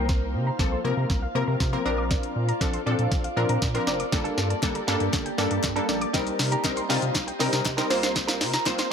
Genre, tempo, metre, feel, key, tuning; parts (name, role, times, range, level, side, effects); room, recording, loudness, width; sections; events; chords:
dance-pop; 119 BPM; 4/4; straight; A4 = 440 Hz
funky polysynth comp; accompaniment; 0.0-8.9 s; F3 to C5; -28 LUFS; left 3 dB; chorus, sidechain pumping
glassy FM pad; sustained chords; 0.0-8.9 s; Bb3 to Bb5; -32 LUFS; equal; ensemble chorus, built-in reverb, sidechain pumping
soft round pluck; arpeggios; 0.0-8.9 s; C5 to C7; -34 LUFS; right 3 dB; chorus, sidechain pumping, ping-pong delay
round analog bass; bass; 0.0-8.8 s; F1 to C3; -29 LUFS; equal; sidechain pumping
smooth R&B drum kit; drums; 0.1-8.9 s; hi-hat, kick drum, shaker, snare drum; -26 LUFS; equal
direct-recorded clean electric guitar; riff; 4.1-8.9 s; Bb3 to Bb4; -34 LUFS; right 6 dB; wide subtle chorus
group handclap; percussion; 4.6-8.8 s; -38 LUFS; left 8 dB
light reverb, digital ambience; high-pass filter; -22 LUFS; side -7 dB against mid
0.0-8.9 A section
build-up 0.0-8.9; drum fill 0.0-8.9; filter sweep 0.0-8.9
0.0 Fsus4/C; 1.9 Bbadd9; 4.1 Gmadd9; 6.1 Cm7; 7.9 Fsus4/C